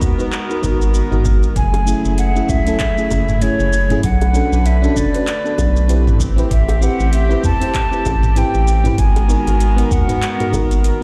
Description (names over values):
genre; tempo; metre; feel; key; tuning
sunset chillout; 97 BPM; 4/4; swing 57% on 16ths; unclear; A4 = 440 Hz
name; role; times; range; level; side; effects
mellow FM electric piano; accompaniment; 0.0-11.0 s; A3 to C5; -24 LUFS; equal; chorus, delay
rich chamber string section; sustained chords; 0.0-11.0 s; D3 to B4; -27 LUFS; equal; none
round analog bass; bass; 0.0-10.9 s; F#1 to E2; -18 LUFS; equal; none
electronic kick drum; drums; 0.0-10.7 s; none; -23 LUFS; equal; overdrive
smooth R&B drum kit; drums; 0.0-11.0 s; handclaps, hi-hat, shaker, toms; -28 LUFS; equal; none
mellow hollow jazz flute; melody; 1.6-10.8 s; C#5 to A5; -24 LUFS; equal; delay
bongos; percussion; 1.7-10.7 s; none; -29 LUFS; equal; none
room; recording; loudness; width
light reverb; played on a big sound system in a bare room, large studio reverb; -16 LUFS; mono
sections
0.0-11.0 A section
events
kick drops out 10.8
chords
0.0 G#m9; 1.6 F#m9; 4.0 Bm9; 6.2 Am9; 9.0 G#m9